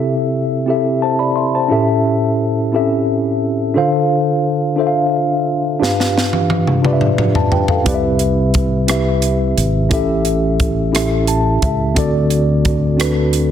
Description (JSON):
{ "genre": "slow gospel", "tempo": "58 BPM (dotted quarters)", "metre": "6/8", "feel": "straight", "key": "C major", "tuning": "A4 = 441 Hz", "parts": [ { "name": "mellow tine electric piano", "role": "accompaniment", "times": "0.0-13.5 s", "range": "G2 to C6", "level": "-15 LUFS", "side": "left 1 dB", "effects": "medium stereo tremolo" }, { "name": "crisp fusion drum kit", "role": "drums", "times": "5.8-13.5 s", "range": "hi-hat, kick drum, rim click, snare drum, toms", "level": "-18 LUFS", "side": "equal", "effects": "none" }, { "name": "fingered electric bass", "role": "bass", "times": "7.9-13.5 s", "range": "Ab1 to D2", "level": "-18 LUFS", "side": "equal", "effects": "none" } ], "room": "moderate lush hall reverb, RT60 1.6 s, small room ambience", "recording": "dense, heavily limited modern master", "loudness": "-13 LUFS", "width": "side -9 dB against mid", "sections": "0.0-13.5 A section", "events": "drum fill 5.8-7.9; tine electric piano fill 10.9-12.0", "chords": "0.0 C6; 1.7 A7; 3.8 Dm7; 5.8 G7; 7.9 Cmaj7; 9.9 A7; 12.0 D7" }